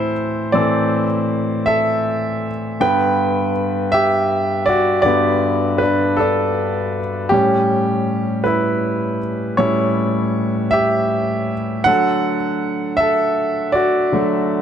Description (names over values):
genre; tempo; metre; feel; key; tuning
pop; 53 BPM (dotted quarters); 6/8; straight; G major; A4 = 440 Hz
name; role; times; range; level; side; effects
clear concert grand piano; solo; 0.0-14.6 s; G2 to G5; -16 LUFS; equal; none
room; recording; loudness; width
light reverb; none; -16 LUFS; side -8 dB against mid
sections
0.0-14.6 A section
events
grand piano solo 0.0-14.6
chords
0.0 Am; 2.8 Gadd9; 7.3 A7; 11.9 Dadd9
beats
| 0.53 1.66 | 2.79 3.92 | 5.06 6.19 | 7.32 8.45 | 9.59 10.72 | 11.85 12.98 | 14.12